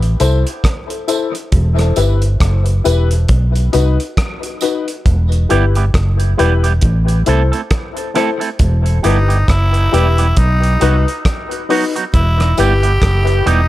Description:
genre	dub reggae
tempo	68 BPM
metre	4/4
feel	swing 59% on 16ths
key	E harmonic minor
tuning	A4 = 440 Hz
part	vintage muted fingered electric bass	bass	0.0-13.7 s	E1 to C2	-13 LUFS	equal	none
part	cloth-damped thuddy drum kit	drums	0.0-13.7 s	hi-hat, kick drum, rim click	-18 LUFS	equal	none
part	dark upright piano	stabs	0.2-12.8 s	D#4 to C5	-20 LUFS	left 6 dB	dub echo
part	tambourine	percussion	0.2-4.9, 12.6-12.8 s	none	-30 LUFS	right 10 dB	dub echo
part	electric guitar with an envelope filter	accompaniment	5.5-13.6 s	F#3 to A4	-21 LUFS	right 6 dB	dub echo
part	growling tenor saxophone	melody	9.0-13.7 s	D#4 to G4	-19 LUFS	equal	dub echo
room	small room ambience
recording	echo-heavy mix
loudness	-12 LUFS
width	side -15 dB against mid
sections	0.0-13.7 A section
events	break 0.0-8.6; part muted 5.1-12.1, 12.1-13.7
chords	0.0 Am; 1.5 Em; 3.3 B; 5.1 Em; 6.8 Am; 8.6 Em; 10.4 B; 12.1 Em

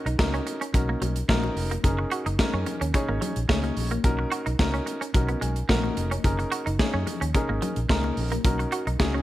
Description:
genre	early-eighties boogie funk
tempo	109 BPM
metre	4/4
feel	straight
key	F# major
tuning	A4 = 440 Hz
part	warm baby grand piano	accompaniment	0.0-9.2 s	C#4 to G#5	-30 LUFS	equal	none
part	semi-hollow electric guitar	riff	0.0-9.2 s	F#3 to F#4	-32 LUFS	right 4 dB	analog chorus
part	vintage muted fingered electric bass	bass	0.1-9.2 s	E#1 to F#2	-28 LUFS	equal	none
part	modern studio drum kit	drums	0.1-9.1 s	hi-hat, kick drum, snare drum	-26 LUFS	equal	gated reverb
part	congas	percussion	0.2-9.1 s	none	-36 LUFS	left 10 dB	none
room	light reverb, small room ambience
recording	none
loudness	-23 LUFS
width	side -15 dB against mid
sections	0.0-9.2 A section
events	grand piano fill 5.1-6.2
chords	0.0 Bmaj9; 1.8 F#6; 4.0 Bmaj9; 6.2 F#6; 8.4 Bmaj9

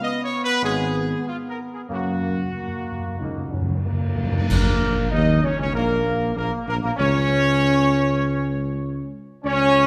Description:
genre	classical, ceremonial fanfare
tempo	96 BPM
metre	4/4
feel	straight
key	unclear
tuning	A4 = 440 Hz
part	mellow trumpet section	melody	0.0-9.9 s	E#4 to D#5	-28 LUFS	equal	none
part	mellow French horn section	sustained chords	0.0-9.9 s	A#3 to D#4	-29 LUFS	equal	none
part	clear trombone section	sustained chords	0.6-9.9 s	C#3 to D#4	-29 LUFS	equal	none
part	dark tuba	bass	0.6-9.9 s	G#1 to F#2	-26 LUFS	equal	none
part	cymbal swell, clash cymbals and concert bass drum	percussion	1.9-5.7 s	none	-29 LUFS	equal	none
part	timpani	percussion	1.9-5.4 s	F#2	-28 LUFS	equal	none
room	wet scoring stage reverb, RT60 1.7 s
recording	none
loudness	-22 LUFS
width	mono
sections	0.0-4.5 A section; 4.5-9.9 A section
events	timpani fill 1.9-4.5; band accent 4.5-5.1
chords	0.0 N.C.; 1.9 F#; 4.5 A#madd11

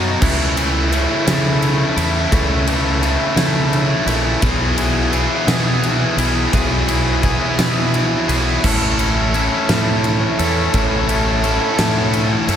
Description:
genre	post-rock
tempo	57 BPM (dotted quarters)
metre	6/8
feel	straight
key	A major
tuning	A4 = 440 Hz
part	distorted electric guitar	riff	0.0-12.6 s	A2 to A4	-17 LUFS	equal	overdrive, slapback echo
part	growling fingered electric bass	bass	0.0-12.6 s	A1 to C#3	-20 LUFS	equal	overdrive
part	huge arena drum kit	drums	0.2-12.6 s	crash cymbal, kick drum, ride cymbal, snare drum	-20 LUFS	equal	none
part	deep dark ambient pad	sustained chords	9.5-12.6 s	A4 to C#6	-28 LUFS	right 2 dB	chorus, built-in reverb
room	wet lush hall reverb, RT60 1.7 s, studio reverb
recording	big arena sound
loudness	-14 LUFS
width	side -9 dB against mid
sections	0.0-12.6 A section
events	none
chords	0.2 A/C#; 4.4 E/B; 8.6 A

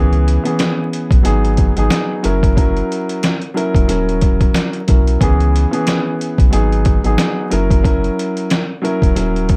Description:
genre	hip hop, boom-bap hip-hop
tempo	91 BPM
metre	4/4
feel	swing 56% on 16ths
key	unclear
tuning	A4 = 440 Hz
part	dark grand piano	accompaniment	0.0-9.6 s	E3 to A#4	-20 LUFS	equal	high-pass filter, low-pass filter, plate reverb
part	soft dub sub bass	bass	0.0-9.6 s	D#1 to C#2	-18 LUFS	equal	none
part	trip hop sampler-style drum kit	drums	0.1-9.6 s	hi-hat, kick drum, snare drum	-18 LUFS	equal	overdrive
room	little or no reverb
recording	vinyl crackle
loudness	-15 LUFS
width	mono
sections	0.0-9.6 A section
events	none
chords	0.0 C#m7; 1.3 G#m7; 2.2 F#7; 5.2 C#m7; 6.5 G#m7; 7.5 F#7

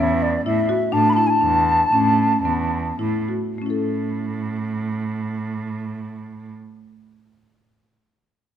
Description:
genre	contemporary instrumental, chamber music in an uneven meter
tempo	101-130 BPM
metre	5/4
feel	straight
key	A major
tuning	A4 = 440 Hz
part	hollow wooden flute	melody	0.0-3.0 s	D5 to B5	-19 LUFS	equal	none
part	marimba with medium mallets	arpeggios	0.0-6.7 s	A3 to A4	-23 LUFS	left 5 dB	none
part	rich cello	bass	0.0-6.5 s	E2 to A2	-24 LUFS	right 5 dB	none
room	moderate scoring stage reverb, RT60 1.9 s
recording	none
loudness	-18 LUFS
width	side -9 dB against mid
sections	0.0-3.6 A section; 3.6-6.5 B section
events	slowing down 0.0-3.6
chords	0.0 Asus2; 3.6 A

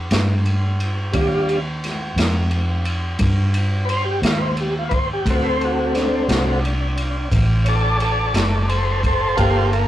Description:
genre	slow blues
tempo	58 BPM (dotted quarters)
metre	12/8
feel	straight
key	unclear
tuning	A4 = 438 Hz
part	vintage muted fingered electric bass	bass	0.0-9.9 s	F#1 to G2	-20 LUFS	equal	none
part	crunchy breakbeat drum kit	drums	0.1-9.9 s	kick drum, ride cymbal, snare drum	-23 LUFS	equal	none
part	tonewheel organ	sustained chords	1.1-9.9 s	G3 to D5	-20 LUFS	equal	slow rotary speaker
room	moderate booth ambience, RT60 0.3 s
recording	rough rehearsal-room recording, tube saturation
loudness	-17 LUFS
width	side -13 dB against mid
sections	0.0-9.9 A section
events	tonewheel organ solo 0.0-9.9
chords	0.0 N.C.; 1.1 Ebmaj7; 5.2 D7; 9.4 Gm7

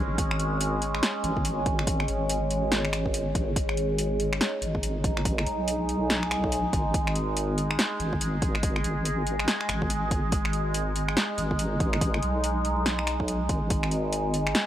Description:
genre	deep dubstep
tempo	142 BPM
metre	4/4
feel	swing 61% on 16ths, half-time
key	G# minor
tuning	A4 = 439 Hz
part	overtone-sweeping drone	sustained chords	0.0-14.7 s	G#3 to G#4	-29 LUFS	right 1 dB	chorus, built-in reverb
part	deep soft wobble bass	bass	0.0-14.5 s	G#1 to B1	-29 LUFS	equal	chorus
part	deep house drum kit	drums	0.2-14.7 s	finger snaps, hi-hat, snare drum	-29 LUFS	equal	overdrive
part	electronic kick drum	drums	0.2-13.8 s	none	-29 LUFS	equal	overdrive
room	light reverb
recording	vinyl crackle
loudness	-24 LUFS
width	side -11 dB against mid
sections	0.0-14.7 A section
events	none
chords	0.0 G#m

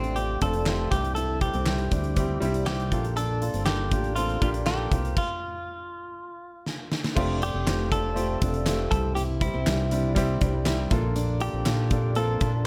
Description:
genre	piano-driven pop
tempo	120 BPM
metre	4/4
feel	straight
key	F major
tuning	A4 = 437 Hz
part	direct-recorded clean electric guitar	melody	0.0-12.6 s	C4 to A4	-33 LUFS	equal	none
part	warm concert grand piano	accompaniment	0.0-12.7 s	G2 to A4	-33 LUFS	equal	none
part	fingerpicked steel-string acoustic guitar	riff	0.0-12.5 s	C4 to F4	-38 LUFS	equal	none
part	fat analog bass	bass	0.0-12.7 s	F1 to D2	-30 LUFS	equal	none
part	huge arena drum kit	drums	0.0-12.5 s	crash cymbal, handclaps, hi-hat, kick drum, snare drum	-31 LUFS	equal	none
room	light reverb, studio ambience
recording	none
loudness	-26 LUFS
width	mono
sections	0.0-7.2 A section; 7.2-12.7 B section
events	stop 5.2-7.2; drum fill 6.7-7.2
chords	0.0 Fadd9; 0.9 C; 2.9 Bbmaj7; 4.9 C7sus4; 7.2 Fadd9; 8.9 C; 10.9 Bbmaj7

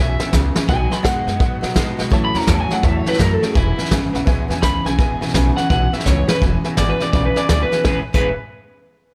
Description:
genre	rockabilly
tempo	168 BPM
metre	4/4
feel	swing 63% on 8ths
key	E major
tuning	A4 = 441 Hz
part	electric guitar through a small old amp	melody	0.0-8.3 s	E4 to B5	-24 LUFS	equal	tape echo
part	honky-tonk upright piano	accompaniment	0.0-8.3 s	B4 to A5	-32 LUFS	equal	none
part	picked steel-string acoustic guitar	accompaniment	0.0-8.3 s	A2 to G#4	-30 LUFS	equal	none
part	electric guitar through a small old amp	riff	0.0-8.3 s	E2 to B4	-27 LUFS	equal	subtle chorus
part	upright bass	bass	0.0-8.3 s	E1 to B2	-24 LUFS	equal	none
part	vintage brush drum kit	drums	0.2-8.2 s	crash cymbal, hi-hat, kick drum, snare drum	-22 LUFS	equal	none
room	light reverb, small room ambience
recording	none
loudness	-18 LUFS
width	mono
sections	0.0-6.4 A section; 6.4-7.9 B section; 7.9-9.1 C section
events	drum fill 0.0-0.7, 6.1-6.4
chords	0.0 E6; 0.7 B6; 2.1 A6; 3.6 E6

